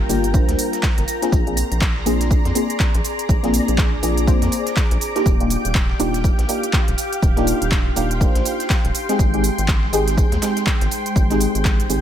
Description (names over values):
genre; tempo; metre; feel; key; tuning
deep house; 122 BPM; 4/4; swing 59% on 16ths; unclear; A4 = 439 Hz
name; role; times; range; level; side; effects
soft string machine; sustained chords; 0.0-12.0 s; Ab3 to D6; -27 LUFS; equal; ensemble chorus, sidechain pumping
deep mellow chord stab; stabs; 0.0-12.0 s; G3 to C5; -22 LUFS; left 1 dB; chorus, sidechain pumping, dub echo
rubbery square bass; bass; 0.0-12.0 s; Eb1 to F2; -23 LUFS; equal; sidechain pumping
analog string pad; texture; 0.0-12.0 s; G5 to Bb5; -31 LUFS; left 1 dB; ensemble chorus, phaser, sidechain pumping
warbly tape-like pad; texture; 0.0-12.0 s; Ab3 to Ab5; -39 LUFS; right 2 dB; none
deep house drum kit; drums; 0.1-12.0 s; handclaps, hi-hat, shaker; -26 LUFS; right 2 dB; none
dusty soul sampler-style drum kit; drums; 0.1-12.0 s; hi-hat, snare drum, tambourine; -35 LUFS; equal; high-pass filter on perc, high-pass filter on snare, high-pass filter on hats
electronic kick drum; drums; 0.3-11.8 s; none; -18 LUFS; equal; none
room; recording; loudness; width
little or no reverb; none; -16 LUFS; side -10 dB against mid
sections
0.0-12.0 A section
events
none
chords
0.0 Gm7; 1.3 Bb9; 5.3 Ebmaj9; 9.2 Abmaj7